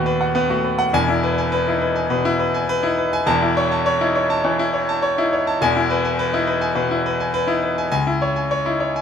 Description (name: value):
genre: classical, virtuoso piano study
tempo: 103 BPM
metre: 4/4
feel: rubato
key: E major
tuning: A4 = 445 Hz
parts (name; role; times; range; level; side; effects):
- clear concert grand piano; solo; 0.0-9.0 s; D#1 to A5; -17 LUFS; left 1 dB; none
room: light reverb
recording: close, detailed microphones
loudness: -17 LUFS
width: side -7 dB against mid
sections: 0.0-9.0 A section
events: none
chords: 0.0 B/D#; 0.9 E; 3.3 A/E; 5.6 E; 7.9 C#m